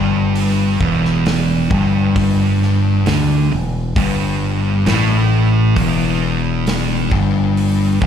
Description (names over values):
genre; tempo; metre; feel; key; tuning
stoner and doom metal; 66 BPM; 4/4; straight; E minor; A4 = 439 Hz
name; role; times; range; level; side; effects
fuzz guitar; riff; 0.0-8.1 s; E2 to D3; -16 LUFS; left 1 dB; distortion
growling fingered electric bass; bass; 0.0-8.1 s; E1 to D2; -18 LUFS; equal; overdrive
big rock drum kit; drums; 0.4-8.1 s; hi-hat, kick drum, snare drum; -23 LUFS; equal; none
room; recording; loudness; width
little or no reverb; live gig heard through the venue's PA, club reverb; -13 LUFS; side -8 dB against mid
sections
0.0-8.1 A section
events
none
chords
0.0 Em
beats
0.35 1.26 | 2.16 3.06 3.96 4.87 | 5.77 6.67 7.57